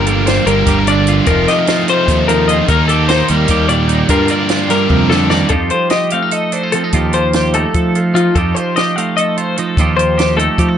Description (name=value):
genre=math rock and midwest emo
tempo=297 BPM (eighths)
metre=7/8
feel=straight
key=unclear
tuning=A4 = 440 Hz
part: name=twelve-string electric guitar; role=accompaniment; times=0.0-10.8 s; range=G2 to Bb4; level=-17 LUFS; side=right 5 dB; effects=none
part: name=twelve-string electric guitar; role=arpeggios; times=0.0-10.8 s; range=F4 to F5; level=-16 LUFS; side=left 5 dB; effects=none
part: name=biting overdriven guitar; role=riff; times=0.0-5.5 s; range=F2 to Eb4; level=-17 LUFS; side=equal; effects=none
part: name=growling fingered electric bass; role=bass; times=0.0-10.8 s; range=F1 to F3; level=-17 LUFS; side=equal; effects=overdrive
part: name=compact cocktail drum kit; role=drums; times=0.1-10.7 s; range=hi-hat, kick drum, snare drum, toms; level=-18 LUFS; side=right 1 dB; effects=none
room=light reverb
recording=nothing above 10.6 kHz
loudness=-11 LUFS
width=side -9 dB against mid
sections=0.0-5.5 A section; 5.5-10.8 B section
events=drum fill 4.9-5.5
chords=0.0 Gm7; 1.3 F7sus4; 2.7 Ebmaj7; 4.1 Gm7; 5.5 F9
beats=0.06 0.26 0.46 0.67 0.87 1.07 | 1.27 1.47 1.68 1.88 2.08 2.28 2.48 | 2.69 2.89 3.09 3.29 3.50 3.70 3.90 | 4.10 4.30 4.51 4.71 4.91 5.11 5.32 | 5.52 5.72 5.92 6.13 6.33 6.53 6.74 | 6.94 7.14 7.34 7.55 7.75 7.95 8.15 | 8.36 8.56 8.76 8.96 9.17 9.37 9.57 | 9.77 9.97 10.18 10.38 10.58